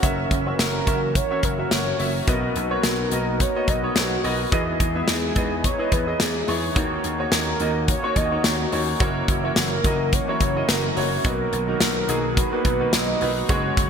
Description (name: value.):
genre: 1980s-style pop.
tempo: 107 BPM.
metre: 4/4.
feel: swing 55% on 16ths.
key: B major.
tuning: A4 = 440 Hz.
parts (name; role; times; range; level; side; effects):
clear concert grand piano; accompaniment; 0.0-13.9 s; B2 to E5; -25 LUFS; right 1 dB; analog chorus.
lush unison pad; sustained chords; 0.0-13.9 s; C#3 to F#4; -31 LUFS; equal; chorus, phaser.
vintage slap bass; bass; 0.0-13.9 s; F#1 to E2; -28 LUFS; equal; none.
modern studio drum kit; drums; 0.0-13.9 s; hi-hat, kick drum, snare drum; -23 LUFS; equal; gated reverb.
mellow horn-like synth lead; melody; 0.5-13.4 s; F#4 to D#5; -28 LUFS; equal; chorus, ping-pong delay.
room: moderate lush hall reverb, RT60 2.5 s.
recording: bright 1980s-style digital production.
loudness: -20 LUFS.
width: side -7 dB against mid.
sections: 0.0-13.9 A section.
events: none.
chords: 0.0 F#7; 2.3 Bmaj7; 4.5 Emaj7; 6.8 D#m7; 9.0 F#7; 11.2 Bmaj7.